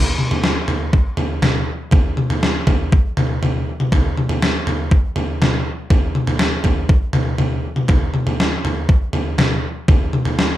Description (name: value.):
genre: rock.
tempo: 121 BPM.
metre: 4/4.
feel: straight.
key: none.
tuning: none.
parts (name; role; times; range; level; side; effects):
gated 80s digital drum machine; drums; 0.2-10.5 s; kick drum, snare drum, toms; -15 LUFS; equal; gated reverb, gated reverb snare, overdrive.
room: light reverb.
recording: rough home demo mix.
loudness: -15 LUFS.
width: side -14 dB against mid.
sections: 0.0-10.6 A section.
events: none.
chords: none.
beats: 0.44 0.94 1.44 | 1.93 2.43 2.92 3.42 | 3.92 4.42 4.91 5.41 | 5.91 6.40 6.90 7.40 | 7.89 8.39 8.89 9.38 | 9.88 10.38.